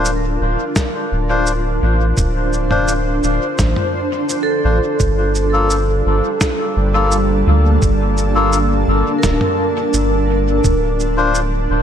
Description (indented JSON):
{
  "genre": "ambient dub",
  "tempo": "85 BPM",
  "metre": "4/4",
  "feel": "straight",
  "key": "G minor",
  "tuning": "A4 = 438 Hz",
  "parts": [
    { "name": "granular cloud pad", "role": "sustained chords", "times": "0.0-11.8 s", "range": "G3 to A5", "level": "-20 LUFS", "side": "equal", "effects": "built-in reverb" },
    { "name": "melodica", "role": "stabs", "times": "0.0-11.4 s", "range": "Bb3 to C5", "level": "-21 LUFS", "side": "left 3 dB", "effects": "dub echo" },
    { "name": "soft dub sub bass", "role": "bass", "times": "0.0-11.8 s", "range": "D1 to D2", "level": "-17 LUFS", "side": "equal", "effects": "none" },
    { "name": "lo-fi sampler-style drum kit", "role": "drums", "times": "0.1-11.5 s", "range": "shaker, snare drum, toms", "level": "-24 LUFS", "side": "equal", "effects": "dub echo" },
    { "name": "electronic kick drum", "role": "drums", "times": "0.8-10.8 s", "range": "none", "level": "-18 LUFS", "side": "equal", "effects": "none" },
    { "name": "vibraphone with medium hard mallets", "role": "arpeggios", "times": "4.4-10.8 s", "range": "A4 to Bb4", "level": "-23 LUFS", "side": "right 4 dB", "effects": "dub echo" }
  ],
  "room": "light reverb",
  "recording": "none",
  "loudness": "-14 LUFS",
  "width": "side -9 dB against mid",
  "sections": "0.0-5.0 A section; 5.0-11.8 B section",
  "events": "none",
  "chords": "0.0 Dm7; 5.0 Gm9; 10.6 Dm7",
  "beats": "0.06 0.76 1.47 | 2.17 2.88 3.59 4.29 | 5.00 5.70 6.41 7.12 | 7.82 8.53 9.23 9.94 | 10.64 11.35"
}